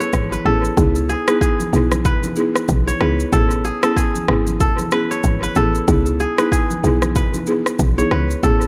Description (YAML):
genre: afrobeats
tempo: 94 BPM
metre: 4/4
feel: swing 58% on 16ths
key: C# minor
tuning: A4 = 439 Hz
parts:
  - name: buzzing marimba with soft mallets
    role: accompaniment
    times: 0.0-8.7 s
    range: B3 to G#4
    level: -23 LUFS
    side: equal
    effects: dub echo
  - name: kora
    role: riff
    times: 0.0-8.7 s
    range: G#4 to C#5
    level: -26 LUFS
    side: equal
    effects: dub echo
  - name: afro-pop drum kit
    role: drums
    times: 0.0-8.7 s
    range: kick drum, rim click, shaker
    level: -23 LUFS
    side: equal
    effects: dub echo
  - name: woody log drum bass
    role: bass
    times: 0.1-8.7 s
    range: G#1 to C#2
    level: -22 LUFS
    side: equal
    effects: none
  - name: congas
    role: percussion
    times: 0.1-8.6 s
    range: none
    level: -30 LUFS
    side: equal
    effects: none
room: light reverb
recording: echo-heavy mix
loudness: -18 LUFS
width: mono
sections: 0.0-8.7 A section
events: none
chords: 0.0 Amaj7; 0.8 C#m7; 3.3 Amaj7; 5.9 C#m7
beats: 0.14 | 0.77 1.41 2.05 2.69 | 3.33 3.96 4.60 5.24 | 5.88 6.52 7.16 7.79 | 8.43